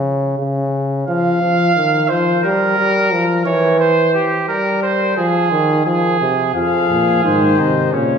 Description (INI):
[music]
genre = classical, imitative canzona for brass ensemble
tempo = 88 BPM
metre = 4/4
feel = straight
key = unclear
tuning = A4 = 436 Hz
[part]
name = clear trombone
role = accompaniment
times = 0.0-8.2 s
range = C3 to G3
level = -16 LUFS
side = equal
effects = none
[part]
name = mellow trumpet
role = second line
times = 1.1-8.2 s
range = Db4 to F5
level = -17 LUFS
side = right 3 dB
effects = none
[part]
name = warm trumpet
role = melody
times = 6.5-8.2 s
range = C5 to F5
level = -19 LUFS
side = left 10 dB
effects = none
[part]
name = mellow bass trombone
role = bass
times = 6.6-8.2 s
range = F2 to C3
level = -18 LUFS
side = right 1 dB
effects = none
[sound]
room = wet recital hall reverb, RT60 1.7 s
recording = recorded in a church or concert hall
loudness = -13 LUFS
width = side -6 dB against mid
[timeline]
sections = 0.0-6.6 A section; 6.6-8.2 B section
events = none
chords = 0.0 N.C.; 1.1 F5; 2.4 Gdim; 3.8 C/E; 5.2 Fm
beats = 0.40 | 1.08 1.76 2.44 3.12 | 3.80 4.49 5.17 5.86 | 6.55 7.24 7.93